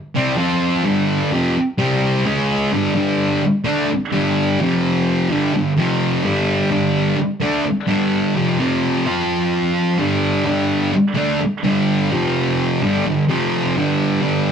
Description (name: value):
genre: rock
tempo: 128 BPM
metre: 4/4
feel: straight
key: unclear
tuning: A4 = 440 Hz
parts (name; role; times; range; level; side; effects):
- thick fuzz guitar; solo; 0.2-14.5 s; F2 to F4; -16 LUFS; equal; distortion
room: moderate studio reverb, RT60 0.5 s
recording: rough rehearsal-room recording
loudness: -16 LUFS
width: side -7 dB against mid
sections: 0.0-3.0 A section; 3.0-10.5 B section; 10.5-14.5 C section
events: none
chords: 0.4 F5; 0.8 G5; 1.8 C5; 2.3 C#5; 2.7 G5; 4.6 F5; 5.3 G5; 5.8 F5; 6.2 G5; 8.6 F5; 10.0 G5; 12.1 F5; 12.8 G5; 13.3 F5; 13.7 G5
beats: 0.13 0.60 | 1.07 1.54 2.02 2.49 | 2.96 3.42 3.89 4.36 | 4.83 5.30 5.77 6.24 | 6.70 7.17 7.64 8.11 | 8.58 9.04 9.51 9.98 | 10.45 10.92 11.39 11.86 | 12.33 12.80 13.28 13.74 | 14.22